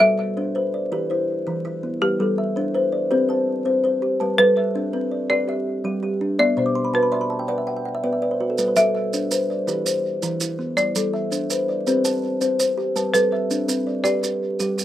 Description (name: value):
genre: southern african traditional, mbira-style interlocking cycle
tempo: 110 BPM (dotted quarters)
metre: 12/8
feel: straight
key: G major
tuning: A4 = 440 Hz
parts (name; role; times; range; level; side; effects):
- folk marimba with hard mallets; melody; 0.0-14.8 s; G4 to E5; -19 LUFS; equal; none
- kalimba; arpeggios; 0.0-14.8 s; E3 to A5; -23 LUFS; left 4 dB; slapback echo
- kalimba; arpeggios; 0.0-14.8 s; B2 to D6; -25 LUFS; right 3 dB; none
- maracas; percussion; 8.6-14.8 s; none; -28 LUFS; right 6 dB; none
room: light reverb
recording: recorded outdoors, with no room sound, vinyl crackle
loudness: -19 LUFS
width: side -12 dB against mid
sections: 0.0-14.8 A section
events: kalimba fill 6.5-8.6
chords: 0.0 G; 0.9 Em; 2.0 G; 3.1 C5; 4.2 G; 6.4 Bm; 8.6 G; 9.7 Em; 10.8 G; 11.9 C5; 13.0 G